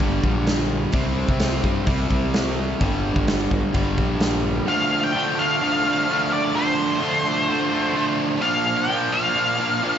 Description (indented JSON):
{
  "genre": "classic rock",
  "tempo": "128 BPM",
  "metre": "4/4",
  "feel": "straight",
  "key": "unclear",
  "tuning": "A4 = 441 Hz",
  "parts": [
    { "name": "cranked stack guitar", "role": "riff", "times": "0.0-10.0 s", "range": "G2 to D4", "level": "-22 LUFS", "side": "right 1 dB", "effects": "overdrive" },
    { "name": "fuzz fingered electric bass", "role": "bass", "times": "0.0-4.6 s", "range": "G1 to G2", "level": "-25 LUFS", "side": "equal", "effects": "overdrive" },
    { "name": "big rock drum kit", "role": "drums", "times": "0.0-4.3 s", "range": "hi-hat, kick drum, snare drum", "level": "-23 LUFS", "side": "equal", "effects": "none" },
    { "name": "octave-fuzz lead guitar", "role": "melody", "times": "4.7-10.0 s", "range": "C5 to G5", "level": "-21 LUFS", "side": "equal", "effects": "distortion, slapback echo" }
  ],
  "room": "moderate lush hall reverb, RT60 2.1 s",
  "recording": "big arena sound, nothing above 7.8 kHz",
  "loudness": "-19 LUFS",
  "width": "side -9 dB against mid",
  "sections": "0.0-4.7 A section; 4.7-10.0 B section",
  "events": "none",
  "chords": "0.0 Gm; 0.9 C5; 2.8 Gm; 4.7 Dm7; 8.4 Bb"
}